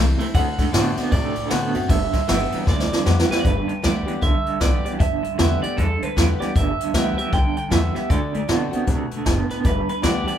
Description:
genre	rockabilly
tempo	155 BPM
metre	4/4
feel	swing 62% on 8ths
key	G major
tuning	A4 = 440 Hz
part	picked steel-string acoustic guitar	accompaniment	0.0-10.4 s	G2 to G4	-28 LUFS	left 5 dB	none
part	electric guitar through a small old amp	riff	0.0-10.4 s	G2 to B3	-27 LUFS	right 4 dB	tremolo
part	upright bass	bass	0.0-10.3 s	F#1 to C3	-24 LUFS	equal	none
part	jazz brush drum kit	drums	0.2-10.3 s	hi-hat, kick drum, ride cymbal, snare drum	-22 LUFS	equal	none
part	electric guitar through a small old amp	melody	0.3-10.4 s	A4 to G5	-26 LUFS	right 4 dB	phaser
room	light reverb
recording	band playing live in one room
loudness	-18 LUFS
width	side -10 dB against mid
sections	0.0-3.4 A section; 3.4-10.4 B section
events	drum fill 2.7-3.4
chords	0.4 D7; 1.9 G; 8.1 D7; 9.7 G

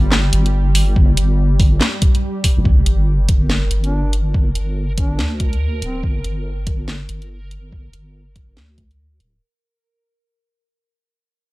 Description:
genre	deep dubstep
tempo	142 BPM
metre	4/4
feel	swing 61% on 16ths, half-time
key	G minor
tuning	A4 = 439 Hz
part	granular cloud pad	sustained chords	0.0-2.7 s	G3	-28 LUFS	right 2 dB	built-in reverb
part	deep soft wobble bass	bass	0.0-9.4 s	D1 to D2	-18 LUFS	equal	chorus, transformer saturation
part	garage drum kit	drums	0.1-9.3 s	handclaps, hi-hat, snare drum	-20 LUFS	equal	studio ambience
part	electronic kick drum	drums	1.0-8.9 s	none	-16 LUFS	equal	studio ambience
part	sub drop	sound effects	2.7-4.3 s	none	-20 LUFS	equal	none
part	backwards swelling texture	texture	3.1-9.4 s	Bb4	-35 LUFS	right 4 dB	built-in reverb
part	dark duduk	melody	3.8-6.0 s	C4 to D4	-32 LUFS	equal	dub echo
room	little or no reverb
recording	dry, gritty hardware recording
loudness	-14 LUFS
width	side -20 dB against mid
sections	0.0-2.7 A section; 2.7-9.4 B section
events	drop 0.0-2.7; fade-out 2.7-9.4; impact 2.7-4.3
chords	0.0 N.C.; 2.7 Gm

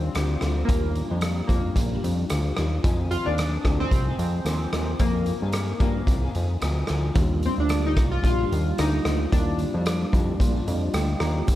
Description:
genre	indie pop, bedroom pop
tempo	111 BPM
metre	4/4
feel	swing 55% on 16ths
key	Eb major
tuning	A4 = 440 Hz
part	chorused retro synth keys	melody	0.0-10.9 s	Bb3 to F4	-29 LUFS	left 1 dB	lush chorus, slapback echo
part	electric guitar through a small old amp	accompaniment	0.0-11.6 s	F2 to Ab4	-33 LUFS	left 4 dB	ensemble chorus, warbly pitch drift
part	fat analog bass	bass	0.0-11.6 s	F1 to G2	-25 LUFS	equal	none
part	raw garage drum kit	drums	0.1-11.6 s	hi-hat, kick drum, rim click, shaker	-26 LUFS	equal	none
part	mellow tine electric piano	accompaniment	7.1-11.6 s	G3 to Bb5	-30 LUFS	right 3 dB	medium stereo tremolo, cassette tape
room	studio reverb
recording	none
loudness	-21 LUFS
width	side -14 dB against mid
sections	0.0-11.6 A section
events	tine electric piano fill 10.4-11.5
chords	0.0 Ebmaj9; 2.8 Fm7; 7.2 Ebmaj9

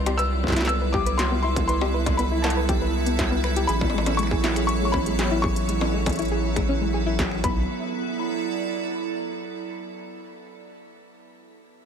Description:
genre	IDM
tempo	120 BPM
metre	4/4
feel	straight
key	B dorian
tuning	A4 = 440 Hz
part	felt-muted upright piano	melody	0.0-7.7 s	A5 to E6	-30 LUFS	left 2 dB	ping-pong delay, shimmer reverb
part	icy glass pad	sustained chords	0.0-9.6 s	F#3 to D5	-28 LUFS	right 3 dB	chorus, built-in reverb, shimmer reverb
part	round analog bass	bass	0.0-7.7 s	A1 to C2	-26 LUFS	equal	none
part	flickering grainy texture	texture	0.2-7.7 s	E4 to E5	-36 LUFS	equal	built-in reverb, shimmer reverb
part	soft round pluck	arpeggios	0.1-7.7 s	G#3 to B4	-30 LUFS	left 3 dB	chorus, cassette tape, ping-pong delay, shimmer reverb
part	industrial drum kit	drums	0.1-7.5 s	finger snaps, hi-hat, snare drum, struck metal	-29 LUFS	left 1 dB	overdrive
part	electronic kick drum	drums	0.4-7.5 s	none	-27 LUFS	equal	distortion, overdrive
room	light reverb, digital ambience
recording	none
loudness	-21 LUFS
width	side -7 dB against mid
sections	0.0-7.7 A section; 7.7-9.7 B section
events	none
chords	0.0 Cmaj7; 3.7 Amaj7; 7.4 B5; 7.7 Bm

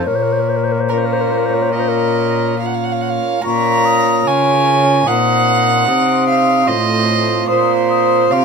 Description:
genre	classical, baroque-style sonata movement with continuo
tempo	73 BPM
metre	4/4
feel	straight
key	Bb minor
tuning	A4 = 440 Hz
part	bright baroque flute	melody	0.0-8.4 s	Bb4 to Eb6	-20 LUFS	left 10 dB	none
part	warm violin	second line	0.0-8.4 s	Bb4 to Bb5	-16 LUFS	right 4 dB	none
part	pipe organ, principal chorus	accompaniment	0.0-8.4 s	A2 to C5	-18 LUFS	right 1 dB	none
part	rich cello	bass	0.0-8.4 s	A2 to Db3	-20 LUFS	left 1 dB	none
room	moderate studio reverb, RT60 0.6 s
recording	minimal, uncompressed stereo recording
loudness	-12 LUFS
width	side -5 dB against mid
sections	0.0-3.4 A section; 3.4-8.4 B section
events	none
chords	0.1 Bbm; 5.1 Cm7b5/Bb; 6.7 F7/A

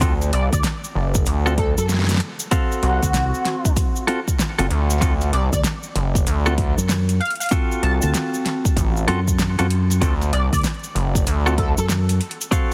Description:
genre	glitch hop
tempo	96 BPM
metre	4/4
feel	swing 63% on 16ths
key	unclear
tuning	A4 = 439 Hz
part	semi-hollow electric guitar	stabs	0.0-12.7 s	C4 to E#5	-28 LUFS	equal	sidechain pumping, digital delay
part	gritty driven synth bass	bass	0.0-11.7 s	F#1 to D2	-22 LUFS	equal	tube saturation
part	electronic kick drum	drums	0.0-12.7 s	none	-24 LUFS	equal	small room ambience
part	pop drum kit	drums	0.0-12.7 s	hi-hat, snare drum	-29 LUFS	equal	small room ambience
part	cabasa	percussion	0.0-12.7 s	none	-32 LUFS	equal	none
part	sync lead	melody	0.3-11.9 s	F#4 to A5	-30 LUFS	equal	ensemble chorus, digital delay
part	fingered electric bass	bass	0.5-12.2 s	C2 to F#2	-22 LUFS	equal	none
room	light reverb, digital ambience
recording	heavily compressed radio sound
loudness	-20 LUFS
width	mono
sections	0.0-12.7 A section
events	none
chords	0.0 D7#9

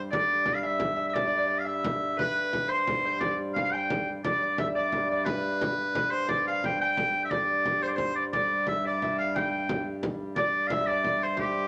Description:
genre	medieval dance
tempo	117 BPM (dotted quarters)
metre	6/8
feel	straight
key	G mixolydian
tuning	A4 = 440 Hz
part	hand-pumped harmonium	drone	0.0-11.7 s	G2	-38 LUFS	equal	none
part	clear shawm	melody	0.1-11.7 s	G4 to G5	-30 LUFS	equal	none
part	concert harp	second line	0.1-11.7 s	G4 to G5	-35 LUFS	equal	none
part	frame drum	percussion	0.1-11.6 s	none	-37 LUFS	equal	none
room	moderate studio reverb, RT60 0.5 s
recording	none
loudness	-28 LUFS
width	mono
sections	0.0-4.2 A section; 4.2-11.7 B section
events	none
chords	none

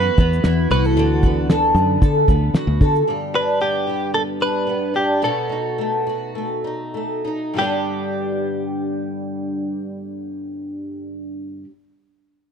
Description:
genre	acoustic pop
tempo	97-114 BPM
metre	4/4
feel	swing 55% on 16ths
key	G major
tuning	A4 = 440 Hz
part	direct-recorded clean electric guitar	melody	0.0-11.6 s	G4 to B4	-23 LUFS	right 1 dB	wide subtle chorus
part	fingerpicked twelve-string acoustic guitar	accompaniment	0.0-11.7 s	G2 to A4	-22 LUFS	equal	double-tracked left and right
part	glassy FM pad	sustained chords	0.0-3.0 s	D3 to F#5	-29 LUFS	equal	ensemble chorus, built-in reverb
part	fingered electric bass	bass	0.0-3.0 s	C2 to D3	-19 LUFS	equal	none
part	cloth-damped thuddy drum kit	drums	0.2-3.1 s	kick drum, shaker, snare drum	-17 LUFS	equal	none
room	studio reverb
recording	dry, close 1970s-style studio recording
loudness	-17 LUFS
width	side -7 dB against mid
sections	0.0-3.1 A section; 3.1-7.6 B section; 7.6-12.5 C section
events	slowing down 3.1-7.6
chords	0.0 Esus2; 1.0 D6; 3.1 G; 5.2 B7; 7.6 G

